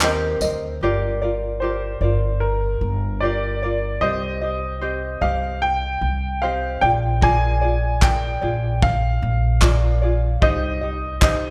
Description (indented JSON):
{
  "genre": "acoustic pop",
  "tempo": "75 BPM",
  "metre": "4/4",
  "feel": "straight",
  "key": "unclear",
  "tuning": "A4 = 440 Hz",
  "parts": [
    { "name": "tenor ukulele", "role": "accompaniment", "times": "0.0-11.5 s", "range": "C4 to Eb5", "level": "-27 LUFS", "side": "equal", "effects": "none" },
    { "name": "upright bass", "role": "bass", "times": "0.0-11.5 s", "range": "G1 to Eb2", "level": "-25 LUFS", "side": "equal", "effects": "none" },
    { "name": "cloth-damped thuddy drum kit", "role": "drums", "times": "0.0-0.6, 7.2-11.4 s", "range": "handclaps, kick drum, tambourine", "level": "-22 LUFS", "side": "equal", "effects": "none" },
    { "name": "clear upright piano", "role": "melody", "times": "1.6-11.5 s", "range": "Bb4 to Ab5", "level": "-26 LUFS", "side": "equal", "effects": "none" }
  ],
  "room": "moderate concert hall reverb, RT60 1.9 s",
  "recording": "recorded in a church or concert hall",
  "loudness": "-21 LUFS",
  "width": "mono",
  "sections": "0.8-11.5 A section",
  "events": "none",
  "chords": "0.0 Cm7/Eb; 0.8 Gm7; 4.0 Cm; 6.8 Bb7; 10.4 Cm",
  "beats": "0.01 | 0.81 1.62 2.42 3.22 | 4.02 4.82 5.62 6.42 | 7.22 8.02 8.82 9.62 | 10.42 11.22"
}